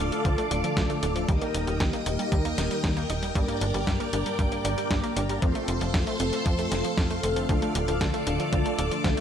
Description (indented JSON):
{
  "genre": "italo disco",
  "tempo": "116 BPM",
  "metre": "4/4",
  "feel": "straight",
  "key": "G minor",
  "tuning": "A4 = 440 Hz",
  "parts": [
    { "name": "string machine, full ensemble", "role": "sustained chords", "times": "0.0-9.2 s", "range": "A4 to Eb6", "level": "-31 LUFS", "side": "equal", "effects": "phaser, ensemble chorus" },
    { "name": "wide unison pluck", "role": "arpeggios", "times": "0.0-9.2 s", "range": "F3 to Eb4", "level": "-33 LUFS", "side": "right 3 dB", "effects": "digital delay" },
    { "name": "mellow synth brass", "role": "stabs", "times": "0.0-9.2 s", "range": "G2 to Bb4", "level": "-32 LUFS", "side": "left 2 dB", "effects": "chorus, digital delay" },
    { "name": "tight sequencer bass", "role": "bass", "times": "0.0-9.2 s", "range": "D1 to G2", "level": "-30 LUFS", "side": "equal", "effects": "none" },
    { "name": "clean 12-bit digital drum machine", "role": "drums", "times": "0.1-9.2 s", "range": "hi-hat, snare drum", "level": "-33 LUFS", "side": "left 1 dB", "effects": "none" },
    { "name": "electronic kick drum", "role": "drums", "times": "0.2-9.1 s", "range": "none", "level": "-27 LUFS", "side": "equal", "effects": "none" }
  ],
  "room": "light reverb, digital ambience",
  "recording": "none",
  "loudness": "-24 LUFS",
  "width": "side -8 dB against mid",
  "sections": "0.0-9.2 A section",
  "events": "none",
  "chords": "0.0 Dm; 1.3 Eb; 3.4 Gm; 5.4 F; 7.5 Dm",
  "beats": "0.25 0.77 | 1.29 1.80 2.32 2.84 | 3.35 3.87 4.39 4.91 | 5.42 5.94 6.46 6.98 | 7.49 8.01 8.53 9.04"
}